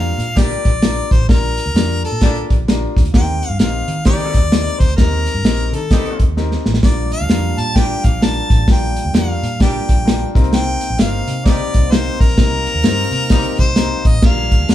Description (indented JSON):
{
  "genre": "uptempo 1960s-style soul",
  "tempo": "130 BPM",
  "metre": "4/4",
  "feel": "swing 62% on 8ths",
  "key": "Bb major",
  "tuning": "A4 = 440 Hz",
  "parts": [
    { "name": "clear harmonica", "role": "melody", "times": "0.0-14.7 s", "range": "A4 to A5", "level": "-22 LUFS", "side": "left 2 dB", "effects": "none" },
    { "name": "warm concert grand piano", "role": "accompaniment", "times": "0.0-14.7 s", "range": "C4 to Bb4", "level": "-25 LUFS", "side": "left 6 dB", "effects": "none" },
    { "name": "vintage muted fingered electric bass", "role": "bass", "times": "0.0-14.7 s", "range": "G1 to Eb3", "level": "-20 LUFS", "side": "equal", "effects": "none" },
    { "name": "warm soul drum kit", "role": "drums", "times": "0.2-14.7 s", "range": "crash cymbal, hi-hat, kick drum, snare drum", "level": "-14 LUFS", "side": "equal", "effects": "none" },
    { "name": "dark horn section", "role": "second line", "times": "0.4-13.7 s", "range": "G3 to G4", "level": "-28 LUFS", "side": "right 1 dB", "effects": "none" },
    { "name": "tonewheel organ", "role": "sustained chords", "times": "6.8-14.7 s", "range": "G3 to Eb4", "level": "-28 LUFS", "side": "right 2 dB", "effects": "slow rotary speaker, overdrive, chorus vibrato" }
  ],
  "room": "light reverb",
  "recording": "band playing live in one room, faint mains hum",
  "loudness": "-13 LUFS",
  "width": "side -12 dB against mid",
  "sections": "0.0-14.2 A section",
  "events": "drum fill 6.4-6.8",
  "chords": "0.0 Bb6; 3.1 Eb6; 6.8 Bb6; 10.3 Cm7; 14.2 Bb6"
}